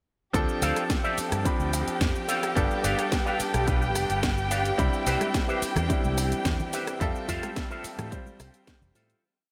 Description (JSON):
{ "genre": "nu-disco, nu disco", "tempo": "108 BPM", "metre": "4/4", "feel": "straight", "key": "D dorian", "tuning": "A4 = 439 Hz", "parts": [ { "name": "bright baby grand piano", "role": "accompaniment", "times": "0.3-9.2 s", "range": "F3 to B5", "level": "-33 LUFS", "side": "equal", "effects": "sidechain pumping, diffuse ambient delay" }, { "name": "rich chamber violin section", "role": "sustained chords", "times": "0.3-9.2 s", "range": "G4 to G5", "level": "-34 LUFS", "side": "equal", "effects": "sidechain pumping" }, { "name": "fingered electric bass with an envelope filter", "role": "bass", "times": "0.3-9.1 s", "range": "F1 to A2", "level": "-32 LUFS", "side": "equal", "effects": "none" }, { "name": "electronic kick drum", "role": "drums", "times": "0.3-8.8 s", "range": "none", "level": "-31 LUFS", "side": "equal", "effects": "none" }, { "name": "house drum kit", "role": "drums", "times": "0.3-9.2 s", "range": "cabasa, hi-hat, rim click, snare drum", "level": "-36 LUFS", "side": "equal", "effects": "none" }, { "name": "electric guitar with an envelope filter", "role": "riff", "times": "0.6-9.2 s", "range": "F4 to F5", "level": "-35 LUFS", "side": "equal", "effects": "analog chorus, diffuse ambient delay" }, { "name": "congas", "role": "percussion", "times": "5.2-8.9 s", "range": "none", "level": "-40 LUFS", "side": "equal", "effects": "none" } ], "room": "moderate huge ambient reverb, RT60 6.0 s", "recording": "dreamy mix soaked in reverb", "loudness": "-27 LUFS", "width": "mono", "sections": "0.3-9.2 drop", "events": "drop 0.3-9.2; fade-out 6.3-9.2", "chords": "0.3 Dm7; 2.6 G7; 4.8 Cmaj7; 7.0 Fmaj7" }